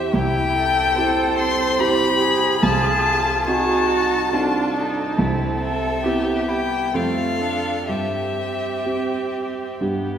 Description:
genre	classical, slow romantic movement for piano quintet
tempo	62-74 BPM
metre	3/4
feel	rubato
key	C major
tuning	A4 = 438 Hz
part	muted violin	melody	0.0-9.8 s	E5 to C6	-23 LUFS	left 5 dB	none
part	muted cello	second line	0.0-10.2 s	Eb4 to A4	-26 LUFS	right 4 dB	none
part	muted violin	second line	0.0-10.2 s	E4 to C5	-27 LUFS	right 1 dB	none
part	dark concert grand piano	accompaniment	0.0-10.2 s	C2 to A4	-24 LUFS	right 1 dB	none
part	muted viola	accompaniment	0.0-10.2 s	A3 to G4	-28 LUFS	right 2 dB	none
room	wet scoring stage reverb, RT60 2.1 s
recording	recorded in a church or concert hall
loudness	-18 LUFS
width	side -8 dB against mid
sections	0.0-10.2 A section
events	none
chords	0.1 C; 2.6 Cdim7; 5.2 C; 6.9 F; 7.9 C/G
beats	| 0.13 0.97 1.80 | 2.63 3.47 4.33 | 5.18 6.04 6.94 | 7.89 8.87 9.82

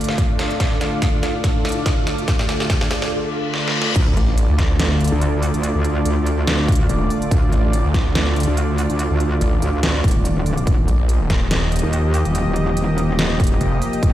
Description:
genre	heavy wobble dubstep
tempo	143 BPM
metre	4/4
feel	swing 55% on 16ths, half-time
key	D phrygian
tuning	A4 = 441 Hz
part	lush unison pad	sustained chords	0.0-14.1 s	D3 to Eb5	-24 LUFS	equal	chorus, sidechain pumping
part	dubstep drum kit	drums	0.0-14.1 s	crash cymbal, hi-hat, snare drum	-24 LUFS	equal	high-pass filter on hats, high-pass filter on snare, high-pass filter on cymbals
part	riser, reverse cymbal and sub drop	sound effects	0.1-5.6 s	none	-27 LUFS	left 1 dB	none
part	granular cloud pad	texture	0.0-3.1 s	D4 to F5	-29 LUFS	equal	built-in reverb, sidechain pumping
part	electronic kick drum	drums	0.2-14.1 s	none	-18 LUFS	equal	none
part	metallic wobble bass	bass	4.0-14.1 s	Eb1 to Eb2	-19 LUFS	equal	distortion, chorus, overdrive
part	snarling distorted saw bass	bass	4.2-13.8 s	Eb1 to D2	-18 LUFS	equal	distortion, overdrive
room	digital ambience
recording	played on a big sound system in a bare room, large studio reverb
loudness	-16 LUFS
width	side -13 dB against mid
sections	0.0-4.0 A section; 4.0-14.1 B section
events	build-up 0.0-4.0; drum fill 0.0-3.1, 3.5-4.0; riser 0.1-3.1; reverse cymbal 3.1-4.0; drop 4.0-14.1; impact 4.0-5.6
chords	0.0 Dm; 10.7 Ebadd9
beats	0.18 | 0.60 1.02 1.44 1.86 | 2.28 2.70 3.12 3.54 | 3.96 4.38 4.80 5.22 | 5.63 6.05 6.47 6.89 | 7.31 7.73 8.15 8.57 | 8.99 9.41 9.83 10.25 | 10.67 11.09 11.51 11.93 | 12.35 12.77 13.19 13.61 | 14.03

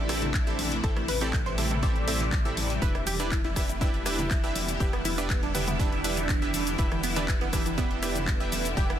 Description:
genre	progressive house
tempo	121 BPM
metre	4/4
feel	straight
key	unclear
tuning	A4 = 441 Hz
part	shimmering ambient pad	sustained chords	0.0-9.0 s	C3 to E4	-33 LUFS	equal	chorus, built-in reverb, phaser, vintage 12-bit sampler grit, sidechain pumping
part	tight sequenced synth	arpeggios	0.0-9.0 s	E3 to D5	-34 LUFS	right 1 dB	chorus, phaser, sidechain pumping, tape echo
part	supersaw stab	stabs	0.0-9.0 s	C4 to E5	-33 LUFS	right 2 dB	sidechain pumping, tape echo
part	tight sequencer bass	bass	0.0-9.0 s	E1 to A1	-34 LUFS	equal	sidechain pumping
part	house drum kit	drums	0.1-9.0 s	handclaps, hi-hat, shaker	-34 LUFS	left 2 dB	none
part	soft brush drum kit	drums	0.1-8.9 s	hi-hat, snare drum	-44 LUFS	right 4 dB	none
part	deep house drum kit	percussion	0.1-9.0 s	congas, rim click, toms	-38 LUFS	right 1 dB	overdrive, sidechain pumping on snare, sidechain pumping on perc, sidechain pumping on toms
part	electronic kick drum	drums	0.3-8.9 s	none	-28 LUFS	equal	none
room	digital ambience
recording	dense, heavily limited modern master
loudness	-25 LUFS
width	side -10 dB against mid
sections	0.0-9.0 A section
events	none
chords	0.0 Am7; 2.8 Em7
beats	0.34 | 0.84 1.33 1.83 2.32 | 2.82 3.32 3.81 4.31 | 4.80 5.30 5.79 6.29 | 6.79 7.28 7.78 8.27 | 8.77

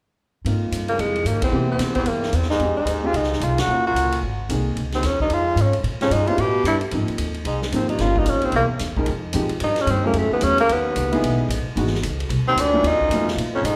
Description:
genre	jazz, small-group swing and bop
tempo	223 BPM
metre	4/4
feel	swing 61% on 8ths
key	Ab major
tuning	A4 = 436 Hz
part	upright bass	bass	0.4-13.8 s	G1 to C3	-27 LUFS	equal	none
part	warm upright piano	accompaniment	0.5-13.4 s	F2 to Bb4	-28 LUFS	equal	none
part	vintage drum kit	drums	0.5-13.7 s	hi-hat, kick drum, ride cymbal, snare drum	-33 LUFS	equal	none
part	warm tenor saxophone	melody	0.9-13.8 s	Ab3 to G4	-24 LUFS	equal	none
part	warm baritone saxophone	second line	0.9-13.8 s	C2 to B2	-30 LUFS	equal	none
room	moderate recital hall reverb, RT60 1.4 s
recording	recorded in a church or concert hall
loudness	-21 LUFS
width	mono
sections	0.5-9.1 A section; 9.1-13.8 B section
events	band accent 1.4, 3.6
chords	0.5 Ab6; 1.5 C7; 2.6 Fm7; 3.7 Ebm7; 4.2 Ab; 4.8 Db; 5.8 Bbm7; 6.4 Asus2; 6.9 Ab6; 8.0 Gm7b5; 8.5 C7b13; 9.1 Fm9; 10.2 Gbm7; 10.7 Badd9; 11.2 Emaj9; 12.3 Cdim; 12.8 B7#11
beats	| 0.45 0.72 0.99 1.26 | 1.53 1.80 2.07 2.34 | 2.61 2.88 3.15 3.42 | 3.69 3.96 4.23 4.50 | 4.76 5.03 5.30 5.57 | 5.84 6.11 6.38 6.65 | 6.92 7.19 7.46 7.73 | 8.00 8.27 8.54 8.81 | 9.08 9.35 9.62 9.88 | 10.15 10.42 10.69 10.96 | 11.23 11.50 11.77 12.04 | 12.31 12.57 12.84 13.11 | 13.38 13.65

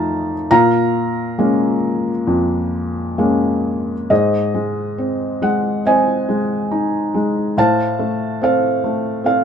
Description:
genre	classical, lyrical solo piano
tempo	64-73 BPM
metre	4/4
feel	rubato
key	unclear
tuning	A4 = 440 Hz
part	felt-muted upright piano	solo	0.0-9.4 s	F2 to Bb5	-15 LUFS	equal	none
room	light reverb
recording	dark, warm production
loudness	-15 LUFS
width	side -7 dB against mid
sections	0.0-4.1 A section; 4.1-9.4 B section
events	none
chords	0.0 F7; 0.5 Bbm7; 4.1 Ab; 7.6 F/A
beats	| 0.50 1.38 2.27 3.18 | 4.10 4.98 5.85 6.71 | 7.57 8.42 9.25

